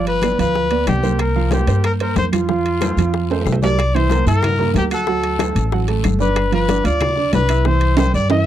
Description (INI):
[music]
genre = latin, salsa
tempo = 186 BPM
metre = 4/4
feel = straight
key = unclear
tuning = A4 = 436 Hz
[part]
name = clear trumpet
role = melody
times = 0.0-8.5 s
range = F4 to E5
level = -20 LUFS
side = left 2 dB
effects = none
[part]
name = clear baby grand piano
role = accompaniment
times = 0.0-8.4 s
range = E3 to Gb6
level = -21 LUFS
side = right 9 dB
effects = none
[part]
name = upright bass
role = bass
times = 0.0-8.4 s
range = G1 to G2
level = -19 LUFS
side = left 1 dB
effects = none
[part]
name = bongos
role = percussion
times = 0.1-8.5 s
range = none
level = -26 LUFS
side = left 10 dB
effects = none
[part]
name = congas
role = percussion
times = 0.1-8.5 s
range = none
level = -25 LUFS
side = left 4 dB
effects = none
[part]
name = timbales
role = percussion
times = 0.1-8.4 s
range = none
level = -24 LUFS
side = right 6 dB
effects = none
[part]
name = claves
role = percussion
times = 0.2-8.1 s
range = none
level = -33 LUFS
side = left 18 dB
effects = none
[part]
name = guiro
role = percussion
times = 0.2-8.5 s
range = none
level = -37 LUFS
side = left 24 dB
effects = none
[sound]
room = little or no reverb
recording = dry, close 1970s-style studio recording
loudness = -15 LUFS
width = side -11 dB against mid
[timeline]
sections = 0.0-3.8 A section; 3.8-8.5 B section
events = drum fill 3.3-3.8, 8.0-8.5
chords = 0.0 G7; 1.2 C7sus4; 2.5 F; 3.8 C7; 5.1 D; 6.4 G7; 7.7 C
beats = 0.23 0.55 0.88 | 1.20 1.52 1.84 2.17 | 2.49 2.81 3.14 3.46 | 3.78 4.11 4.43 4.75 | 5.07 5.40 5.72 6.04 | 6.36 6.69 7.01 7.33 | 7.66 7.98 8.30